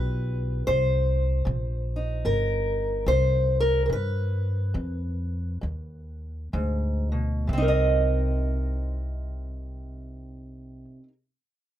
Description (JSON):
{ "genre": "acoustic country blues, solo or duo", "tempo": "62-76 BPM", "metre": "4/4", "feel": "swing 62% on 8ths", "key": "C minor", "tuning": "A4 = 440 Hz", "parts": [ { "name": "fingerpicked steel-string acoustic guitar", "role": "melody", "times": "0.0-11.1 s", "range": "G2 to Eb5", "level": "-27 LUFS", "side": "equal", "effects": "none" }, { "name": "upright bass", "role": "bass", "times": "0.0-10.8 s", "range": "G1 to G2", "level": "-26 LUFS", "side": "equal", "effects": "none" } ], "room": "light reverb", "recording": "none", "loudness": "-23 LUFS", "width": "side -11 dB against mid", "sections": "0.0-7.5 A section; 7.5-11.4 B section", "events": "slowing down 0.7-7.5", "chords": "0.0 G7; 0.7 Cm7; 3.9 G7; 7.5 Cm7" }